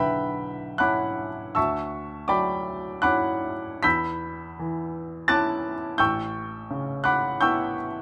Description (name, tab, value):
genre	classical, impressionist solo piano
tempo	69-87 BPM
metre	3/4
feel	rubato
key	unclear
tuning	A4 = 440 Hz
part	clear baby grand piano	solo	0.0-8.0 s	A1 to B6	-26 LUFS	equal	none
room	light reverb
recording	none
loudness	-26 LUFS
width	mono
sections	0.0-8.0 A section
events	none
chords	0.0 Bmadd9; 1.6 Dmaj9; 3.8 Em6; 6.0 A9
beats	0.80 | 1.56 2.30 3.04 | 3.85 4.59 5.30 | 5.99 6.69 7.42